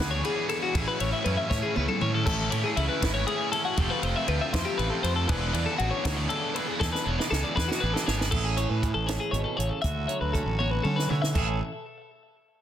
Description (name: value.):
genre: math rock and midwest emo.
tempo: 79 BPM (dotted quarters).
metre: 6/8.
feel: straight.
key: A major.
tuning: A4 = 440 Hz.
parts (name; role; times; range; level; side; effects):
twelve-string electric guitar; arpeggios; 0.0-11.6 s; E4 to E5; -29 LUFS; left 5 dB; spring reverb, digital delay, plate reverb.
cranked stack guitar; riff; 0.0-8.3 s; A2 to G#4; -31 LUFS; right 3 dB; overdrive.
fuzz fingered electric bass; bass; 0.0-11.6 s; E1 to D3; -29 LUFS; right 1 dB; overdrive.
compact cocktail drum kit; drums; 0.0-11.5 s; crash cymbal, hi-hat, kick drum, ride cymbal, snare drum, toms; -31 LUFS; equal; soft clipping on snare.
twangy electric guitar; accompaniment; 8.3-11.6 s; A2 to G#4; -33 LUFS; right 9 dB; plate reverb.
room: light reverb.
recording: dense, heavily limited modern master.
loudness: -24 LUFS.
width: side -10 dB against mid.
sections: 0.0-8.3 A section; 8.3-11.4 B section; 11.4-12.6 C section.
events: drum fill 1.5-2.3, 6.8-8.3, 10.6-11.4.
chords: 0.0 E9sus4; 0.8 Amaj9; 3.8 Fmaj9#11; 5.3 E7sus4; 8.3 Amaj7; 9.8 Dmaj9; 11.4 Amaj7.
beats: 0.00 | 0.75 1.51 | 2.27 3.02 | 3.78 4.54 | 5.29 6.05 | 6.81 7.57 | 8.33 9.09 | 9.84 10.60 | 11.36.